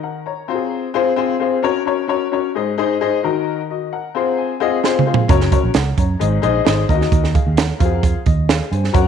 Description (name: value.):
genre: uptempo 1960s-style soul.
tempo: 131 BPM.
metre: 4/4.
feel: straight.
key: unclear.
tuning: A4 = 438 Hz.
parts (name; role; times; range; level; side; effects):
warm upright piano; accompaniment; 0.0-9.1 s; Ab2 to C6; -18 LUFS; left 8 dB; none.
compact cocktail drum kit; drums; 4.8-9.1 s; hi-hat, kick drum, snare drum, toms; -16 LUFS; right 4 dB; none.
vintage muted fingered electric bass; bass; 5.3-9.1 s; Gb1 to G2; -18 LUFS; right 2 dB; none.
room: moderate echo chamber reverb, RT60 1.3 s, small room ambience.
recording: 1960s-style stereo.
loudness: -15 LUFS.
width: side -7 dB against mid.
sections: 0.0-9.1 A section.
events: upright piano fill 0.9-1.6, 3.9-5.3; drum fill 4.8-5.3.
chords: 0.5 Fm; 1.6 Gb; 2.5 Ab; 3.2 Ebm; 4.1 Fm; 5.3 Gb; 6.2 Ab; 6.9 Ebm; 7.8 Fm.